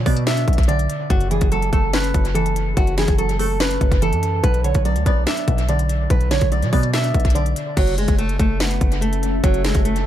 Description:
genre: hip hop, trap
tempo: 144 BPM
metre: 4/4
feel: half-time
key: F# minor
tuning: A4 = 440 Hz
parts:
  - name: flamenco guitar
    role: melody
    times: 0.0-10.0 s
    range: F#3 to E5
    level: -23 LUFS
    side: right 1 dB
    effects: dub echo
  - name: glassy wavetable pluck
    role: accompaniment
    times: 0.0-7.8 s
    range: F#2 to D4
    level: -25 LUFS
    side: right 1 dB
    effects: chorus, dub echo
  - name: hard-hitting 808-style bass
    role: bass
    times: 0.0-10.1 s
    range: F#1 to B2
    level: -21 LUFS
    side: equal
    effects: none
  - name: trap drum kit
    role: drums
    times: 0.1-10.1 s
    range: crash cymbal, hi-hat, kick drum, snare drum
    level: -20 LUFS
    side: equal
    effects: dub echo
  - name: deep dark ambient pad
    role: sustained chords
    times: 8.7-10.1 s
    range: C#4 to E5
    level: -28 LUFS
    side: left 2 dB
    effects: chorus, built-in reverb
room: digital ambience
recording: echo-heavy mix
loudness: -16 LUFS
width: side -11 dB against mid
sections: 0.0-7.8 A section; 7.8-10.1 B section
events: none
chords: 0.0 Bm; 1.1 F#m7; 4.4 Bm; 7.8 F#m7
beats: 0.27 0.69 | 1.10 1.52 1.94 2.35 | 2.77 3.19 3.60 4.02 | 4.44 4.85 5.27 5.69 | 6.10 6.52 6.94 7.35 | 7.77 8.19 8.60 9.02 | 9.44 9.85

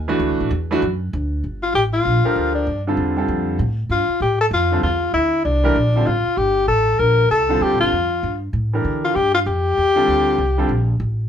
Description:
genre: modal jazz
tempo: 194 BPM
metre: 4/4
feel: swing 62% on 8ths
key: G dorian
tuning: A4 = 439 Hz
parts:
  - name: upright bass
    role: bass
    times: 0.0-11.3 s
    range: G1 to D3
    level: -22 LUFS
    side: equal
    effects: none
  - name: clear concert grand piano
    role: accompaniment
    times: 0.1-10.7 s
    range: D3 to Bb4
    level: -21 LUFS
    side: right 2 dB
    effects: none
  - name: breathy tenor saxophone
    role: melody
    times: 1.6-11.0 s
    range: D4 to Bb4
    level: -17 LUFS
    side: left 3 dB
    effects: none
room: moderate studio ambience, RT60 0.4 s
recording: band playing live in one room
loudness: -16 LUFS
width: side -8 dB against mid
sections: 0.0-1.4 A section; 1.4-11.3 B section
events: none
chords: 0.2 D; 1.4 Gm9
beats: | 0.20 0.51 0.82 1.13 | 1.44 1.75 2.05 2.36 | 2.67 2.98 3.29 3.60 | 3.91 4.21 4.52 4.83 | 5.14 5.45 5.76 6.07 | 6.38 6.68 6.99 7.30 | 7.61 7.92 8.23 8.54 | 8.85 9.15 9.46 9.77 | 10.08 10.39 10.70 11.01

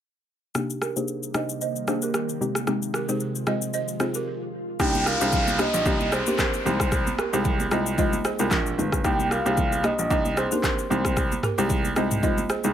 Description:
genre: afrobeats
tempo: 113 BPM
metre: 4/4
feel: swing 55% on 16ths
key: C minor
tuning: A4 = 440 Hz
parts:
  - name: soft round pluck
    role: accompaniment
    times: 0.5-12.7 s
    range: C3 to G4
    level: -29 LUFS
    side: left 3 dB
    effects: chorus, low-pass filter
  - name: glassy FM pad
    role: sustained chords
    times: 1.1-4.8 s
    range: C3 to F4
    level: -34 LUFS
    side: right 1 dB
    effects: ensemble chorus, built-in reverb, low-pass filter
  - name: afro-pop drum kit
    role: drums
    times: 0.6-12.7 s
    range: handclaps, kick drum, rim click, shaker, toms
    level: -27 LUFS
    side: left 1 dB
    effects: none
  - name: balafon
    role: riff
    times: 0.8-12.7 s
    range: F4 to Eb5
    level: -31 LUFS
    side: right 7 dB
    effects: low-pass filter, tape echo
  - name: soft octave-layered synth lead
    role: melody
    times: 4.8-11.4 s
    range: C5 to G5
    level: -28 LUFS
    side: left 1 dB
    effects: chorus, tape echo
  - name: clear baby grand piano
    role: bass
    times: 4.8-12.7 s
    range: G1 to C2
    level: -26 LUFS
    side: right 2 dB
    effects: none
  - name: downlifter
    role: sound effects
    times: 4.8-9.0 s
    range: none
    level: -32 LUFS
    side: left 1 dB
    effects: none
  - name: congas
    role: percussion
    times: 4.9-12.7 s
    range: none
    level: -34 LUFS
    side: right 7 dB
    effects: none
room: moderate small room reverb, RT60 0.5 s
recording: none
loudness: -22 LUFS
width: side -10 dB against mid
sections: 0.5-4.8 A section; 4.8-12.7 B section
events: filter sweep 0.5-4.8; break 4.3-4.8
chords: 0.5 Cm7; 2.4 Fm9/C; 4.8 Cm7; 6.7 Abmaj7/C; 7.7 Bb9sus4/C; 9.0 Cm7; 10.9 Abmaj7/C; 12.0 Bb9sus4/C (rootless)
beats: | 0.55 1.08 1.61 2.14 | 2.67 3.20 3.73 4.27 | 4.80 5.33 5.86 6.39 | 6.92 7.45 7.98 8.51 | 9.04 9.58 10.11 10.64 | 11.17 11.70 12.23

